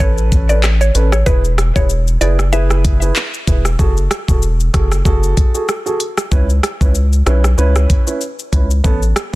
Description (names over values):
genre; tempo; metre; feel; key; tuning
dancehall; 95 BPM; 4/4; swing 56% on 16ths; F# minor; A4 = 440 Hz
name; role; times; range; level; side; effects
mallet-like synth pluck; melody; 0.0-3.0 s; B4 to E5; -22 LUFS; equal; chorus, tape echo
dark baby grand piano; accompaniment; 0.0-9.4 s; B3 to B4; -22 LUFS; right 3 dB; none
round analog bass; bass; 0.0-9.1 s; E1 to C#2; -14 LUFS; equal; none
afro-pop drum kit; drums; 0.0-9.3 s; handclaps, hi-hat, kick drum, rim click, shaker; -15 LUFS; equal; none
room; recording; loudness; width
digital ambience; dense, heavily limited modern master; -12 LUFS; side -19 dB against mid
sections
0.0-3.8 A section; 3.8-9.4 B section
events
none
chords
0.0 Aadd9; 1.3 E; 3.8 F#madd9; 6.3 C#m7; 8.8 Aadd9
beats
0.00 0.63 | 1.26 1.90 2.53 3.16 | 3.79 4.42 5.05 5.68 | 6.32 6.95 7.58 8.21 | 8.84